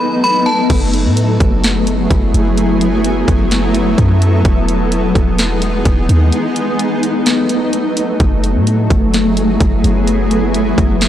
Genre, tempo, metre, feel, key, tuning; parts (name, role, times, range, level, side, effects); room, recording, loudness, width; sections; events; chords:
hip hop, atmospheric cloud-rap; 128 BPM; 4/4; half-time; F# dorian; A4 = 440 Hz
metallic FM bell; melody; 0.0-0.7 s; A5 to B5; -17 LUFS; equal; chorus, digital delay
shimmering ambient pad; sustained chords; 0.0-11.1 s; E3 to A4; -14 LUFS; left 1 dB; chorus, built-in reverb, sidechain pumping
clean 808-style bass; bass; 0.7-11.1 s; E1 to A2; -15 LUFS; equal; transformer saturation
trap drum kit; drums; 0.7-11.1 s; crash cymbal, hi-hat, kick drum, snare drum; -16 LUFS; equal; overdrive, vintage 12-bit sampler grit
light reverb; blown-out, overdriven recording, overdrive; -11 LUFS; side -11 dB against mid
0.7-11.1 A section
break 6.3-8.2
0.0 B7; 0.7 F#m11; 4.5 Emaj7; 6.3 B7; 8.2 F#m11